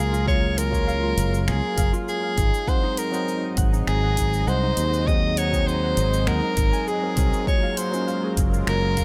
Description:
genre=sunset chillout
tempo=100 BPM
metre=4/4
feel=straight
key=unclear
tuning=A4 = 439 Hz
part: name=breathy soprano saxophone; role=melody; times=0.0-9.0 s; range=Ab4 to Eb5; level=-28 LUFS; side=equal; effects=tape echo
part: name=tine electric piano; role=accompaniment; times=0.0-9.0 s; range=Gb3 to Db5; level=-31 LUFS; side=equal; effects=none
part: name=lush unison pad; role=sustained chords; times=0.0-9.0 s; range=Gb3 to Eb5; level=-36 LUFS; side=equal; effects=chorus, phaser
part: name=concert harp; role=arpeggios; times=0.0-9.0 s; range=Eb4 to Ab5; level=-36 LUFS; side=equal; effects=digital delay
part: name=fretless electric bass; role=bass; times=0.0-9.0 s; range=Gb1 to Eb2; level=-26 LUFS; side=equal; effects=none
part: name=deep house drum kit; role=drums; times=0.1-9.0 s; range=cabasa, finger snaps, hi-hat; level=-34 LUFS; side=equal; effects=none
part: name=electronic kick drum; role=drums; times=0.3-9.0 s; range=none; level=-26 LUFS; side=equal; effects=none
room=light reverb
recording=none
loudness=-22 LUFS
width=mono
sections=0.0-9.0 A section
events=none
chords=0.0 Gbmaj9; 2.4 Ab7; 7.5 Gbmaj9

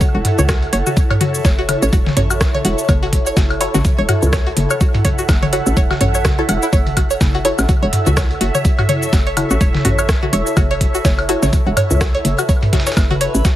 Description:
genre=minimal techno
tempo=125 BPM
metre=4/4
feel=swing 57% on 16ths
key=F# minor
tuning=A4 = 439 Hz
part: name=string-like resonator pluck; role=riff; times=0.0-13.5 s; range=E4 to F#5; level=-22 LUFS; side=equal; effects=chorus, phaser, sidechain pumping, digital delay
part: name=dusty soul sampler-style drum kit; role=drums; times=0.0-13.6 s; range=hi-hat, snare drum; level=-29 LUFS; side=equal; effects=high-pass filter on snare, high-pass filter on hats
part: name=electronic kick drum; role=drums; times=0.0-13.6 s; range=none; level=-15 LUFS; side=equal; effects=overdrive
part: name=minimal click drum kit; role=drums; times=0.0-13.6 s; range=hi-hat, rim click, shaker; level=-23 LUFS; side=equal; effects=overdrive
part: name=electronic toms and woodblock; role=percussion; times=0.0-13.2 s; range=none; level=-20 LUFS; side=left 1 dB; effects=overdrive, tape echo
part: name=airy breathy pad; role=texture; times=0.0-13.6 s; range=E4 to F#5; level=-24 LUFS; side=equal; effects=chorus, sidechain pumping
part: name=bubbling stepped-filter texture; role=texture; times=0.0-13.6 s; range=E5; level=-30 LUFS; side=right 4 dB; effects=chorus, built-in reverb, sidechain pumping
part: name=hollow knocking FM bass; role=bass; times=0.1-13.4 s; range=E1 to C#2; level=-19 LUFS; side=equal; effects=sidechain pumping
part: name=filtered dub chord stab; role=stabs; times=1.7-11.4 s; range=E4 to C#5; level=-24 LUFS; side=left 1 dB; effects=phaser, lush chorus, tape echo
room=light reverb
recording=heavily compressed radio sound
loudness=-13 LUFS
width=side -13 dB against mid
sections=0.0-13.6 A section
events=none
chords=0.0 F#m7

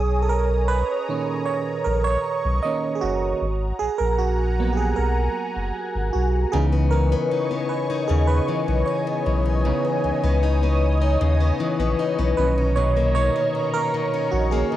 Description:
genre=R&B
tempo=77 BPM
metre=4/4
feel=straight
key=C# dorian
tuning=A4 = 441 Hz
part: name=FM electric piano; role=accompaniment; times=0.0-14.8 s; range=A#2 to D#5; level=-25 LUFS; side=right 6 dB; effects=chorus
part: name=lush unison pad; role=sustained chords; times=0.0-14.8 s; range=C#5 to D#6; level=-28 LUFS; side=equal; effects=chorus, phaser
part: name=warm sub bass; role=bass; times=0.0-14.6 s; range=F#1 to D#2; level=-21 LUFS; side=equal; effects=none
part: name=picked plugged-in steel-string acoustic guitar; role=arpeggios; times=6.5-14.8 s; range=B2 to D#4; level=-24 LUFS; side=left 6 dB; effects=tape echo
room=light reverb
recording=home recording on cassette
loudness=-19 LUFS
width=side -13 dB against mid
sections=0.0-14.8 A section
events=FM electric piano solo 0.0-14.8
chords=0.0 Bmaj9; 3.4 G#m9; 6.5 C#m9; 12.4 Bmaj9

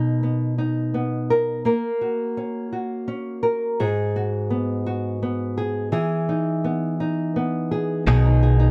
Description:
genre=pop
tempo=56 BPM (dotted quarters)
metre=6/8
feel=straight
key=B major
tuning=A4 = 440 Hz
part: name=nylon-string guitar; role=accompaniment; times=0.0-8.7 s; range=G#2 to A#4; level=-24 LUFS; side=equal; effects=none
part: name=direct-recorded clean electric guitar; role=arpeggios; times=8.1-8.7 s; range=B2 to G#4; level=-28 LUFS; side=equal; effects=none
part: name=fingered electric bass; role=bass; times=8.1-8.7 s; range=B1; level=-20 LUFS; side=equal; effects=none
room=light reverb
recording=dry, close 1970s-style studio recording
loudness=-23 LUFS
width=mono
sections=0.0-8.1 A section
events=none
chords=0.0 Bmaj7; 1.7 F#/A#; 3.8 G#m7; 5.9 Emaj7; 8.1 B6

